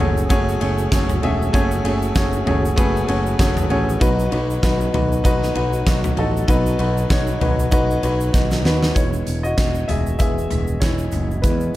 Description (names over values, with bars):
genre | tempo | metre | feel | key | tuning
piano-driven pop | 97 BPM | 4/4 | swing 56% on 16ths | E major | A4 = 440 Hz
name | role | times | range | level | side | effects
warm concert grand piano | accompaniment | 0.0-11.8 s | B2 to E5 | -21 LUFS | left 1 dB | none
tonewheel organ | sustained chords | 0.0-8.9 s | F#3 to A4 | -32 LUFS | right 1 dB | none
picked electric bass | bass | 0.0-11.7 s | E1 to E2 | -22 LUFS | equal | none
huge arena drum kit | drums | 0.0-11.6 s | hi-hat, kick drum, ride cymbal, snare drum, toms | -20 LUFS | equal | none
egg shaker | percussion | 0.2-11.7 s | none | -39 LUFS | right 7 dB | none
room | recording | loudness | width
light reverb, small room ambience | dark, warm production | -16 LUFS | side -15 dB against mid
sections
0.0-9.0 A section; 9.0-11.8 B section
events
drum fill 8.3-9.0; grand piano solo 9.0-11.8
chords
0.0 F#madd9; 4.0 B; 9.0 E